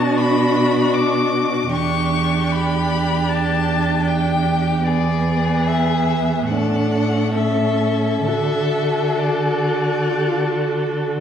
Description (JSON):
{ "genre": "classical, slow romantic movement for string quartet", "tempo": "64-79 BPM", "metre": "4/4", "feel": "rubato", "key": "D major", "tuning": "A4 = 440 Hz", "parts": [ { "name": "rich violin", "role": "melody", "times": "0.0-11.0 s", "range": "D5 to D6", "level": "-24 LUFS", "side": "left 5 dB", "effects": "none" }, { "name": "rich violin", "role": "second line", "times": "0.0-11.2 s", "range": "F#4 to A4", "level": "-23 LUFS", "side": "left 3 dB", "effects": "none" }, { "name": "warm viola", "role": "accompaniment", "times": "0.0-11.2 s", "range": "B3 to F#4", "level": "-23 LUFS", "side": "right 2 dB", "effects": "none" }, { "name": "clear cello", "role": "bass", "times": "0.0-11.2 s", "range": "E2 to D3", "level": "-20 LUFS", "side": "right 2 dB", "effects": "none" } ], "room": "wet scoring stage reverb, RT60 1.7 s", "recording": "heard from further back in the room", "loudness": "-16 LUFS", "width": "side -8 dB against mid", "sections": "0.0-11.2 A section", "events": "none", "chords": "0.0 Bm; 1.7 Em7; 4.9 E7; 6.5 D/A; 7.3 A; 8.3 D" }